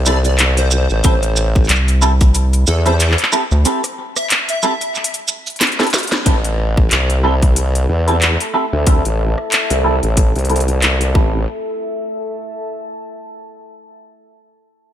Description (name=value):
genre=glitch hop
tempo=92 BPM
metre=4/4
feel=swing 57% on 16ths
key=A minor pentatonic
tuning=A4 = 440 Hz
part: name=formant-sweep wobble bass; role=bass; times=0.0-11.5 s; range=A1 to E2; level=-15 LUFS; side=equal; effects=chorus, overdrive
part: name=plucky unison lead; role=melody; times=0.1-5.1 s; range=A4 to E5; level=-24 LUFS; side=equal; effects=analog chorus, ping-pong delay
part: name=clean electric guitar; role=stabs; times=0.1-11.4 s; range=C4 to A4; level=-21 LUFS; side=right 1 dB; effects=ensemble chorus, sidechain pumping, low-pass filter, ping-pong delay
part: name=drum and bass drum kit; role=drums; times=0.1-11.1 s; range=handclaps, hi-hat, rim click, shaker, snare drum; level=-17 LUFS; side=equal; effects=studio reverb, gated reverb
part: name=electronic kick drum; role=drums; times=1.0-2.3, 6.3-11.3 s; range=none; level=-13 LUFS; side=equal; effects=studio reverb
part: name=rubbery square bass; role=bass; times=1.7-3.7 s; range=C2 to D2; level=-13 LUFS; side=equal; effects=tube saturation
part: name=deep dark ambient pad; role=texture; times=7.8-14.0 s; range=A4 to A5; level=-25 LUFS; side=left 1 dB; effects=chorus, built-in reverb, sidechain pumping
room=little or no reverb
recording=bright 1980s-style digital production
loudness=-13 LUFS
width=side -11 dB against mid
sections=0.0-6.3 A section; 6.3-11.5 B section; 11.5-14.1 C section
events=drop 0.0-6.3; break 3.7-6.3; drum fill 5.6-6.3; band accent 6.1-6.4; filter sweep on clean electric guitar 6.3-11.5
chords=0.0 Am; 6.3 Am7; 11.5 A5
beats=0.39 | 1.04 1.69 2.35 3.00 | 3.65 4.30 4.96 5.61 | 6.26 6.91 7.56 8.22 | 8.87 9.52 10.17 10.82 | 11.48 12.13 12.78 13.43